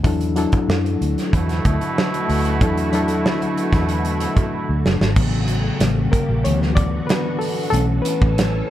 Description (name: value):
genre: lush 1970s-style soul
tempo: 94 BPM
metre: 4/4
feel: straight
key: unclear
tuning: A4 = 436 Hz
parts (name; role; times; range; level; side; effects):
- reed electric piano; accompaniment; 0.0-8.7 s; C#3 to D5; -22 LUFS; left 3 dB; phaser
- soft string machine; sustained chords; 0.9-8.7 s; C#3 to A4; -28 LUFS; equal; ensemble chorus
- vintage muted fingered electric bass; bass; 0.0-8.6 s; F#1 to F#2; -21 LUFS; equal; none
- modern studio drum kit; drums; 0.0-8.5 s; crash cymbal, hi-hat, kick drum, snare drum; -21 LUFS; right 1 dB; none
- clear horn section; stabs; 1.3-4.8 s; B2 to E4; -24 LUFS; right 2 dB; none
room: light reverb, studio reverb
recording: dark, warm production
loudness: -17 LUFS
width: side -12 dB against mid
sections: 0.0-5.2 A section; 5.2-8.7 B section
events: drum fill 4.5-5.2; reed electric piano solo 5.2-8.7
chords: 0.0 E9sus4; 5.2 A6; 5.8 A7b9; 6.5 D6; 7.7 B9sus4